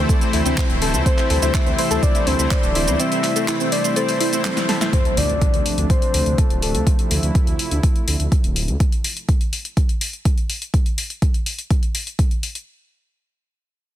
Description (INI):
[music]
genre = progressive house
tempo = 124 BPM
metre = 4/4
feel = straight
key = D minor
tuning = A4 = 439 Hz
[part]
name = soft octave-layered synth lead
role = melody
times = 0.0-6.8 s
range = A4 to E5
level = -25 LUFS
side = left 2 dB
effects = chorus, sidechain pumping, dub echo
[part]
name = warm analog pad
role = sustained chords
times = 0.0-8.8 s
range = C3 to E4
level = -27 LUFS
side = right 2 dB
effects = chorus, sidechain pumping
[part]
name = soft supersaw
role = stabs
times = 0.0-4.9 s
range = A3 to D5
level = -24 LUFS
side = left 4 dB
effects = lush chorus, cassette tape, sidechain pumping, dub echo
[part]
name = dark detuned saw bass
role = bass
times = 0.0-8.8 s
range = D1 to D2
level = -22 LUFS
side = equal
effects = sidechain pumping
[part]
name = soft round pluck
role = arpeggios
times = 0.1-4.9 s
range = C4 to C6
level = -26 LUFS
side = right 1 dB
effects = chorus, sidechain pumping, dub echo
[part]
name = deep house drum kit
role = drums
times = 0.1-12.6 s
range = handclaps, hi-hat, shaker, snare drum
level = -25 LUFS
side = equal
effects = overdrive, sidechain pumping on hats, sidechain pumping on perc
[part]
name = electronic kick drum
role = drums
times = 0.1-12.3 s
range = none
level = -18 LUFS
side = equal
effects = overdrive
[part]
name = impact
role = sound effects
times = 4.9-6.9 s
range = none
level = -30 LUFS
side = equal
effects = none
[sound]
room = light reverb, digital ambience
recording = dense, heavily limited modern master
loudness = -17 LUFS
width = side -12 dB against mid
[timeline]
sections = 0.0-4.9 A section; 4.9-12.7 B section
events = drop 0.0-4.9; drum fill 4.4-4.9; impact 4.9-6.9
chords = 0.0 Am/D; 4.9 Dm7